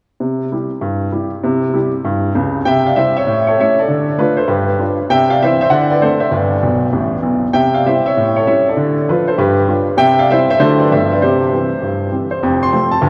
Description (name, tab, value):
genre	jazz, stride piano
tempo	197 BPM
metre	4/4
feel	swing 65% on 8ths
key	C major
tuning	A4 = 441 Hz
part	clear grand piano	solo	0.2-13.1 s	F1 to C6	-15 LUFS	equal	none
room	wet cathedral reverb, RT60 4.3 s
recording	recorded in a church or concert hall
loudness	-15 LUFS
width	mono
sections	0.2-2.7 A section; 2.7-12.4 B section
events	grand piano fill 6.6-7.6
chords	0.2 C; 3.3 A7; 3.9 Dm; 4.5 G7; 5.1 C; 5.7 D5; 6.3 G; 7.6 C; 8.2 A7; 8.8 Dm; 9.4 G7; 10.0 C; 10.6 D7; 10.9 G9; 11.2 C; 12.4 F